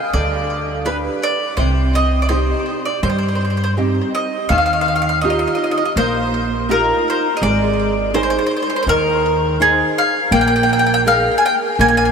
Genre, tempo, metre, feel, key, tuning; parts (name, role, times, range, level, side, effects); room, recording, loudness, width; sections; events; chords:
italian folk, Italian serenade; 82 BPM; 4/4; straight; C harmonic minor, Eb major from 4.5 s; A4 = 440 Hz
mandolin; melody; 0.0-12.1 s; Ab4 to Ab5; -17 LUFS; equal; ping-pong delay
nylon-string guitar; accompaniment; 0.1-12.1 s; C3 to C5; -20 LUFS; right 1 dB; ensemble chorus
upright bass; bass; 0.1-12.1 s; Ab1 to G2; -21 LUFS; equal
wet huge ambient reverb, RT60 4.7 s; dreamy mix soaked in reverb; -14 LUFS; side -6 dB against mid
0.0-4.5 A section; 4.5-12.1 B section
0.0 G; 1.6 Cm; 4.5 Ebadd9; 7.4 Ab; 10.3 Bb7sus4